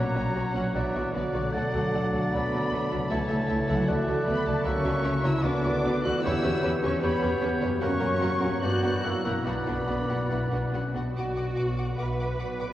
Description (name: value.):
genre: classical, dramatic, fast romantic movement for symphony orchestra.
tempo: 141-157 BPM.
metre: 4/4.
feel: rubato.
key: B minor.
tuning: A4 = 440 Hz.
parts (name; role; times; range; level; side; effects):
dark symphonic violin section; melody; 0.0-12.7 s; D5 to F#6; -36 LUFS; left 2 dB; none.
concert flute; second line; 0.0-10.9 s; F#6 to A6; -37 LUFS; left 1 dB; none.
warm oboe; second line; 0.0-10.9 s; C#5 to E5; -36 LUFS; right 1 dB; none.
warm symphonic violin section; second line; 0.0-12.7 s; F#4 to D6; -36 LUFS; equal; none.
mellow bassoon; accompaniment; 0.0-10.9 s; E3 to B3; -35 LUFS; right 2 dB; none.
rich symphonic viola section; accompaniment; 0.0-12.7 s; A3 to B4; -34 LUFS; equal; none.
mellow French horn section; sustained chords; 0.0-11.1 s; F#3 to G4; -34 LUFS; left 1 dB; none.
concert harp; arpeggios; 0.0-12.7 s; F#2 to E5; -32 LUFS; left 2 dB; none.
dark symphonic cello section; bass; 0.0-12.7 s; B2 to F#4; -33 LUFS; right 1 dB; none.
rich symphonic double bass section; bass; 0.0-12.7 s; A#1 to G2; -34 LUFS; right 1 dB; none.
room: wet cathedral reverb, RT60 4.9 s.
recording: worn, warbling old tape, cassette tape, warbly pitch drift.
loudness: -24 LUFS.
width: side -13 dB against mid.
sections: 0.0-11.2 A section; 11.2-12.7 A section.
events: none.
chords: 0.0 F#/A#; 0.7 Bm; 1.5 D; 3.1 A/C#; 3.9 D; 4.7 F#7/C#; 5.4 Bm/D; 6.2 C#m7b5/E; 7.8 F#; 8.6 Gmaj7; 9.0 F#7; 9.5 Bm.